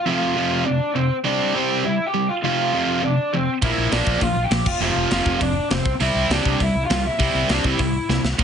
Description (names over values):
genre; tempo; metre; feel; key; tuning
punk rock; 202 BPM; 4/4; straight; unclear; A4 = 440 Hz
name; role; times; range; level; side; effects
lead guitar through a small cranked amp; melody; 0.0-8.2 s; C4 to G5; -23 LUFS; left 1 dB; overdrive
distorted electric guitar; riff; 0.1-8.4 s; F2 to C4; -26 LUFS; left 9 dB; distortion
distorted electric guitar; riff; 0.1-8.4 s; F2 to C4; -23 LUFS; right 9 dB; overdrive
mellow fretless electric bass; bass; 3.6-8.4 s; F1 to C2; -25 LUFS; left 1 dB; none
tight metal drum kit; drums; 3.6-8.4 s; crash cymbal, hi-hat, kick drum, snare drum; -24 LUFS; equal; none
room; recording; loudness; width
light reverb; heavily compressed radio sound, nothing above 10.3 kHz; -18 LUFS; side -7 dB against mid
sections
0.0-8.4 A section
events
half time 0.0-8.4; drum fill 8.1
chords
0.0 F5; 1.1 C; 2.4 F5; 3.6 Bb; 4.7 F5; 5.9 C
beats
| 0.05 0.35 0.65 0.94 | 1.24 1.54 1.84 2.13 | 2.43 2.73 3.03 3.33 | 3.62 3.92 4.22 4.52 | 4.81 5.11 5.41 5.71 | 6.01 6.30 6.60 6.90 | 7.20 7.50 7.79 8.09 | 8.39